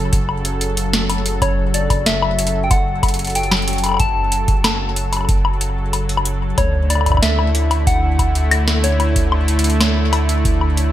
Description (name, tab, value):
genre	IDM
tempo	93 BPM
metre	4/4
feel	straight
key	F# minor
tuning	A4 = 440 Hz
part	warm analog pad	sustained chords	0.0-10.9 s	C#3 to A4	-23 LUFS	equal	chorus
part	rubbery square bass	bass	0.0-10.9 s	F#1 to D2	-19 LUFS	equal	tube saturation
part	electro analog drum machine	drums	0.1-10.9 s	hi-hat, snare drum, woodblock	-20 LUFS	left 2 dB	gated reverb, ping-pong delay
part	electronic kick drum	drums	0.1-10.6 s	none	-20 LUFS	equal	overdrive
part	soft struck synth lead	melody	1.4-9.4 s	C#5 to A5	-24 LUFS	left 2 dB	chorus, cassette tape, ping-pong delay
room	light reverb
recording	bright 1980s-style digital production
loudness	-15 LUFS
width	side -12 dB against mid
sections	0.0-10.9 A section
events	none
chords	0.0 F#m; 6.6 D